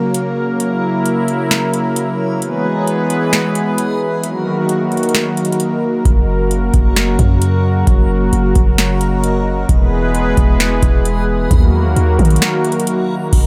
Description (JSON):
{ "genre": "hip hop, atmospheric cloud-rap", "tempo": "132 BPM", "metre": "4/4", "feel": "half-time", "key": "F# mixolydian", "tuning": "A4 = 440 Hz", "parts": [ { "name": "warm analog pad", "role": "sustained chords", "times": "0.0-13.5 s", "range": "C#3 to B4", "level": "-18 LUFS", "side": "equal", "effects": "chorus, sidechain pumping" }, { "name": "backwards swelling texture", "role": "texture", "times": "0.0-13.5 s", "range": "F#4 to B5", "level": "-29 LUFS", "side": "equal", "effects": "built-in reverb" }, { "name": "booming analog drum machine", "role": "drums", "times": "0.1-13.5 s", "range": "crash cymbal, hi-hat, kick drum, snare drum", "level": "-16 LUFS", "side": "equal", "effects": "none" }, { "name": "warm 808-style bass", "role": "bass", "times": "6.1-13.5 s", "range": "E1 to D#3", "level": "-18 LUFS", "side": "equal", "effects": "none" } ], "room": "light reverb", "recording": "none", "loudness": "-15 LUFS", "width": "mono", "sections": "0.0-13.3 A section", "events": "break 0.0-6.1, 12.4-13.3", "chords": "0.0 F#; 2.4 E; 4.2 D#m; 6.1 F#; 9.7 E; 11.5 D#m", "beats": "0.14 | 0.60 1.05 1.51 1.96 | 2.42 2.87 3.33 3.78 | 4.24 4.69 5.14 5.60 | 6.05 6.51 6.96 7.42 | 7.87 8.33 8.78 9.24 | 9.69 10.14 10.60 11.05 | 11.51 11.96 12.42 12.87 | 13.33" }